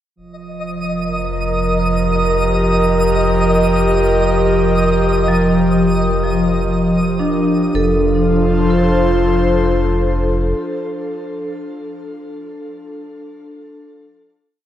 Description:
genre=ambient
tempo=free time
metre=none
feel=none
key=F mixolydian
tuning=A4 = 440 Hz
part: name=airy breathy pad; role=sustained chords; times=0.5-11.5 s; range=F3 to Eb5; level=-16 LUFS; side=right 1 dB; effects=chorus, shimmer reverb
part: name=round analog bass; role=bass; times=0.2-10.5 s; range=F1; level=-20 LUFS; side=equal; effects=tube saturation
part: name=twinkling granular texture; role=texture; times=0.3-7.8 s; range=Eb5 to Eb6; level=-23 LUFS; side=equal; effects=built-in reverb, shimmer reverb
part: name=vibraphone with hard mallets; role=arpeggios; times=5.3-14.0 s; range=F3 to A4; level=-20 LUFS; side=left 1 dB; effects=tape echo, shimmer reverb
room=wet plate reverb, RT60 3.2 s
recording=echo-heavy mix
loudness=-13 LUFS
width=side -11 dB against mid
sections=0.2-7.7 A section; 7.7-11.5 final chord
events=none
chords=0.2 F9sus4; 7.7 F

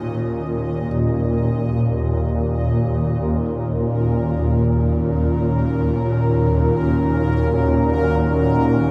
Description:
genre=dark ambient drone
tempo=free time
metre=none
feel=none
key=unclear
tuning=A4 = 439 Hz
part: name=deep dark ambient pad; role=sustained chords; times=0.0-8.9 s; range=Eb3 to Bb4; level=-26 LUFS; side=equal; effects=chorus, built-in reverb
part: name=warm baby grand piano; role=arpeggios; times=0.0-8.9 s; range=none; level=barely audible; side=none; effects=none
part: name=swarming drone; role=drone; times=0.0-8.9 s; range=Eb2 to Bb2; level=-21 LUFS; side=equal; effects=built-in reverb
part: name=bubbling stepped-filter texture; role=texture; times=0.0-8.9 s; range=Bb4 to Eb5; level=-32 LUFS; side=equal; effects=chorus, built-in reverb
room=wet huge ambient reverb, RT60 8.3 s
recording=none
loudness=-19 LUFS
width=mono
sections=0.0-3.2 A section; 3.2-8.9 B section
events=none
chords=0.0 Ebsus2; 3.2 Ebm

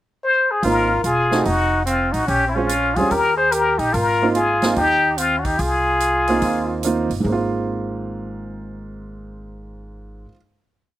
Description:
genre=jazz, small-group swing and bop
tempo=145 BPM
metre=4/4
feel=swing 65% on 8ths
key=Ab major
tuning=A4 = 441 Hz
part: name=trumpet with plunger mute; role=melody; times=0.2-6.8 s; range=Fb4 to C5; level=-18 LUFS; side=left 2 dB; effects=slapback echo
part: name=warm trumpet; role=second line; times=0.6-6.8 s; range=C4 to Ab4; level=-23 LUFS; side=right 2 dB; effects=slapback echo
part: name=warm baby grand piano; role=accompaniment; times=0.6-10.4 s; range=Ab2 to Gb4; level=-22 LUFS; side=right 3 dB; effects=slapback echo
part: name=upright bass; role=bass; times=0.6-10.2 s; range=Fb1 to Fb2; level=-27 LUFS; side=equal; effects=none
part: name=swinging big-band drum kit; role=drums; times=0.6-7.2 s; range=hi-hat, kick drum, snare drum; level=-31 LUFS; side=right 2 dB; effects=none
room=little or no reverb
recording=recorded outdoors, with no room sound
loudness=-16 LUFS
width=side -13 dB against mid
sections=0.0-0.6 pickup bar; 0.6-7.3 A section; 7.3-10.6 final chord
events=none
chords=0.0 N.C.; 0.6 Ab6; 1.5 F7b9; 2.3 Bbm9; 3.1 Eb5; 3.9 Ab6

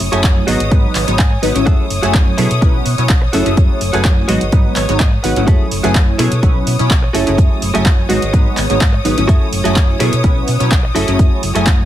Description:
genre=filtered disco house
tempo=126 BPM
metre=4/4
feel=straight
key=F# dorian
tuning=A4 = 438 Hz
part: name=funky polysynth comp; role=accompaniment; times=0.0-11.9 s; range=F#3 to G#5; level=-18 LUFS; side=equal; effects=chorus, phaser, cassette tape, sidechain pumping
part: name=clear symphonic string section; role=sustained chords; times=0.0-11.9 s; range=C#5 to D#6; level=-23 LUFS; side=equal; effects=sidechain pumping
part: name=fingered electric bass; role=bass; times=0.0-11.8 s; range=F#1 to B2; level=-19 LUFS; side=equal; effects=tube saturation, sidechain pumping
part: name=punchy analog drum machine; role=drums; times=0.0-11.8 s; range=finger snaps, handclaps, hi-hat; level=-21 LUFS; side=right 1 dB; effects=sidechain pumping on hats, sidechain pumping on cymbals
part: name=direct-recorded clean electric guitar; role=riff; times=0.1-11.7 s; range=E4 to G#5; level=-22 LUFS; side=right 1 dB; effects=sidechain pumping
part: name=electronic kick drum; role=drums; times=0.2-11.8 s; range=none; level=-12 LUFS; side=equal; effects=overdrive
room=little or no reverb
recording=none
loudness=-11 LUFS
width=side -12 dB against mid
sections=0.0-11.9 A section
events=clean electric guitar fill 1.0-1.7, 4.5-5.5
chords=0.5 G#m7; 1.7 F#m9; 2.4 B9sus4; 3.3 F#m9; 4.3 G#m7; 5.5 F#m9; 6.2 B9sus4; 7.1 F#m9; 8.1 G#m7; 9.3 F#m9; 10.0 B9sus4; 11.0 F#m9

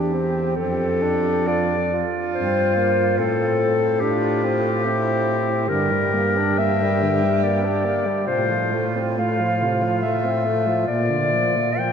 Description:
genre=classical, lyrical piece for single-reed quartet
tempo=70 BPM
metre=3/4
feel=uneven beats, rubato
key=F major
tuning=A4 = 442 Hz
part: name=warm clarinet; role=melody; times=0.0-11.9 s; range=G4 to G5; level=-22 LUFS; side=left 4 dB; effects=none
part: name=clear alto saxophone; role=second line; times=0.0-11.9 s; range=E4 to G4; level=-27 LUFS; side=right 6 dB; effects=none
part: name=warm tenor saxophone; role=accompaniment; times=0.0-11.9 s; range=Bb2 to D4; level=-25 LUFS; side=equal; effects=none
part: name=warm baritone saxophone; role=bass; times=0.0-11.9 s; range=E2 to Bb2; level=-25 LUFS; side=right 2 dB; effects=none
room=wet cathedral reverb, RT60 4.5 s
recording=none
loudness=-18 LUFS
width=side -7 dB against mid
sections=0.0-11.9 A section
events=none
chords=0.0 C/E; 0.6 F; 3.2 F/A; 5.7 Gm; 8.3 F/A; 10.9 Bb

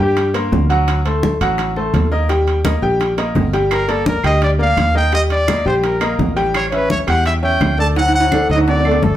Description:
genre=latin, salsa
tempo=169 BPM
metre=4/4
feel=straight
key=unclear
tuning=A4 = 439 Hz
part: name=clear trumpet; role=melody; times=0.0-0.3, 3.7-9.2 s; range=G4 to A5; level=-18 LUFS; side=equal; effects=none
part: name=bright upright piano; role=accompaniment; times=0.0-9.1 s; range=F#3 to G5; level=-19 LUFS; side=left 1 dB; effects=none
part: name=fingered electric bass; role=bass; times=0.0-9.2 s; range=G1 to G2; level=-18 LUFS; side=equal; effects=none
part: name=bongos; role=percussion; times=0.2-9.2 s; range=none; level=-26 LUFS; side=left 4 dB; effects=none
part: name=congas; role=percussion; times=0.2-9.2 s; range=none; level=-23 LUFS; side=left 1 dB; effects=none
part: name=timbales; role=percussion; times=0.2-9.0 s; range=none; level=-23 LUFS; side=right 4 dB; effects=none
part: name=claves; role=percussion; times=3.7-9.0 s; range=none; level=-28 LUFS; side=right 5 dB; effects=none
room=wet studio reverb, RT60 0.5 s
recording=heard from further back in the room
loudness=-13 LUFS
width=side -12 dB against mid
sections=0.0-9.2 A section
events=drum fill 8.0-9.2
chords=0.0 C5; 0.9 D7; 2.3 Eb; 3.7 Gm; 5.1 Eb; 6.5 A7; 8.0 D

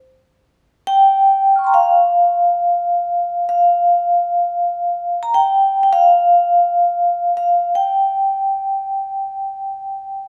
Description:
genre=japanese traditional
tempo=free time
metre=none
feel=none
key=unclear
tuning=A4 = 439 Hz
part: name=vibraphone with hard mallets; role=solo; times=0.9-10.3 s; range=F5 to F6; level=-16 LUFS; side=equal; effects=none
room=moderate concert hall reverb, RT60 1.8 s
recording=none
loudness=-16 LUFS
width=mono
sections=0.0-10.3 A section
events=none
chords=none

